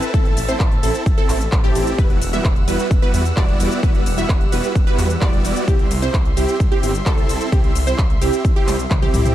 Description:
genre	EDM, festival progressive house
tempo	130 BPM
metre	4/4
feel	straight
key	unclear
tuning	A4 = 440 Hz
part	lush unison pad	sustained chords	0.0-9.3 s	G3 to E6	-29 LUFS	equal	chorus, sidechain pumping
part	wide unison pluck	arpeggios	0.0-9.3 s	G4 to E5	-25 LUFS	moving between left 4 dB and right 5 dB	auto-pan, sidechain pumping, ping-pong delay
part	supersaw chords	riff	0.0-9.3 s	G3 to E5	-24 LUFS	right 1 dB	sidechain pumping, ping-pong delay
part	big-room dance drum kit	drums	0.0-9.3 s	handclaps, hi-hat, ride cymbal, shaker, toms	-27 LUFS	equal	overdrive
part	detuned saw bass	bass	0.1-9.3 s	E1 to E2	-23 LUFS	equal	sidechain pumping
part	electronic kick drum	drums	0.1-9.0 s	none	-17 LUFS	equal	overdrive
room	digital ambience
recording	dark, warm production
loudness	-15 LUFS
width	side -13 dB against mid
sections	0.0-9.3 A section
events	drum fill 8.7-9.3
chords	0.0 Am; 2.0 Emadd9; 5.7 C

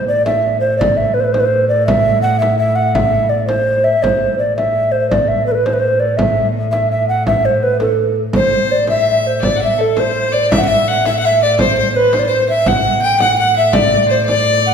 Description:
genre	medieval dance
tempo	111 BPM (dotted quarters)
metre	6/8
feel	straight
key	A dorian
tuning	A4 = 440 Hz
part	mellow hollow tenor recorder	melody	0.0-14.7 s	A4 to G5	-14 LUFS	right 1 dB	none
part	rich viola da gamba	drone	0.0-14.7 s	A2	-21 LUFS	right 1 dB	none
part	frame drum	percussion	0.3-14.7 s	none	-21 LUFS	equal	none
part	rich fiddle	second line	8.3-14.7 s	A4 to G5	-18 LUFS	left 3 dB	none
room	wet recital hall reverb, RT60 1.6 s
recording	recorded in a church or concert hall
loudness	-12 LUFS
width	side -7 dB against mid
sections	0.0-8.4 A section; 8.4-14.7 A section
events	none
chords	none

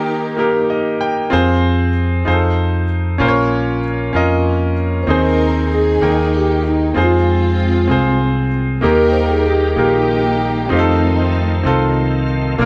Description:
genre	gospel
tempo	64 BPM (dotted quarters)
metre	6/8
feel	straight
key	unclear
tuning	A4 = 442 Hz
part	dark symphonic string section	melody	0.0-0.7, 5.1-12.7 s	Ab3 to Bb4	-24 LUFS	equal	none
part	marimba with soft mallets	melody	0.0-0.7, 5.0-12.7 s	Eb4 to C5	-23 LUFS	equal	none
part	bright baby grand piano	accompaniment	0.0-12.7 s	Bb2 to G5	-19 LUFS	equal	none
part	fingered electric bass	bass	1.3-12.7 s	Bb1 to F2	-20 LUFS	equal	none
part	bright tonewheel organ	sustained chords	8.8-12.7 s	D3 to G4	-26 LUFS	equal	slow rotary speaker, overdrive, chorus vibrato
room	wet stone room reverb, RT60 1.4 s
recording	band playing live in one room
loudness	-16 LUFS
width	mono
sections	0.0-12.7 A section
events	grand piano fill 0.4-1.3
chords	0.0 Eb; 1.3 Fm; 2.3 F7; 3.2 Bbm; 5.1 Ab/Eb; 6.0 Eb; 7.0 Fm; 8.8 Eb; 10.7 F7

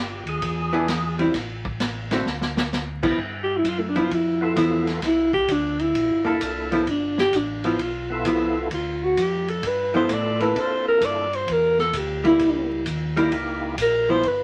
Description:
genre	soul jazz organ trio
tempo	130 BPM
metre	4/4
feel	swing 67% on 8ths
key	G mixolydian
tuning	A4 = 440 Hz
part	percussive tonewheel organ	melody	0.0-1.2, 4.4-13.8 s	Bb3 to A4	-30 LUFS	equal	slow rotary speaker, overdrive, chorus vibrato
part	mellow tonewheel organ	bass	0.0-14.4 s	E1 to C3	-33 LUFS	equal	chorus vibrato, slow rotary speaker
part	vintage drum kit	drums	0.3-14.4 s	crash cymbal, hi-hat, kick drum, ride cymbal, snare drum	-33 LUFS	equal	none
part	archtop guitar, miked and amplified	accompaniment	0.7-14.2 s	D3 to A4	-24 LUFS	equal	none
part	dark alto saxophone	melody	3.4-14.4 s	A3 to D5	-24 LUFS	equal	none
room	light reverb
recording	vinyl crackle, lossy compression artefacts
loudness	-23 LUFS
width	mono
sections	0.0-3.2 A section; 3.2-14.4 B section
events	drum fill 2.3-2.7; alto saxophone solo 3.2-14.4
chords	0.4 E7; 1.3 Am; 2.3 Dm69; 3.2 G13; 5.0 C13; 6.9 G13; 8.7 Dm; 9.6 G13; 10.6 C13; 12.4 C#dim7

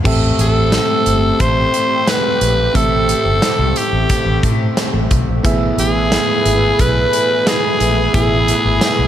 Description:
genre	1980s-style pop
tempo	89 BPM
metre	4/4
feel	straight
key	A minor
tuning	A4 = 439 Hz
part	raw garage guitar	accompaniment	0.0-9.1 s	E2 to A3	-26 LUFS	left 5 dB	overdrive, lush chorus
part	soft electric-piano-like synth keys	accompaniment	0.0-9.1 s	A2 to E5	-22 LUFS	right 3 dB	chorus
part	lush unison pad	sustained chords	0.5-9.1 s	A3 to B4	-23 LUFS	equal	chorus, phaser
part	vintage muted fingered electric bass	bass	0.1-9.1 s	G1 to A2	-18 LUFS	equal	none
part	big rock drum kit	drums	0.1-9.0 s	crash cymbal, hi-hat, kick drum, snare drum, tambourine	-19 LUFS	equal	none
part	raspy alto saxophone	melody	0.4-9.1 s	G4 to C5	-16 LUFS	equal	tape echo
room	light reverb, studio reverb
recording	none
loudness	-12 LUFS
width	side -10 dB against mid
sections	0.1-9.1 A section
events	none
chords	0.1 Am7; 5.4 E

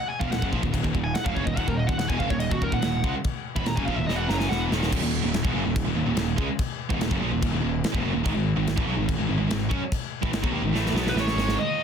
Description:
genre	heavy metal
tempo	144 BPM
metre	4/4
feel	straight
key	Eb minor, Eb phrygian from 4.9 s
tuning	A4 = 440 Hz
part	high-gain lead guitar	melody	0.0-4.6, 11.1-11.8 s	Gb4 to Cb6	-30 LUFS	right 1 dB	distortion, ping-pong delay
part	high-gain distorted guitar	riff	0.2-11.6 s	Eb2 to Db4	-30 LUFS	right 14 dB	distortion
part	scooped high-gain guitar	riff	0.2-11.8 s	Eb2 to Db4	-32 LUFS	left 12 dB	distortion
part	thick fuzz guitar	riff	0.2-11.6 s	Eb2 to Db4	-32 LUFS	left 1 dB	distortion
part	fuzz picked electric bass	bass	0.2-11.6 s	Eb1 to Gb2	-29 LUFS	left 1 dB	overdrive
part	modern studio drum kit	drums	0.2-11.6 s	china cymbal, crash cymbal, kick drum, snare drum	-28 LUFS	left 1 dB	none
room	little or no reverb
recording	dense, heavily limited modern master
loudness	-23 LUFS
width	side -7 dB against mid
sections	0.0-4.9 A section; 4.9-11.6 B section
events	lead electric guitar solo 0.0-4.9; drum fill 4.1-4.9, 10.7-11.6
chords	0.0 Ebm; 8.3 Ab5

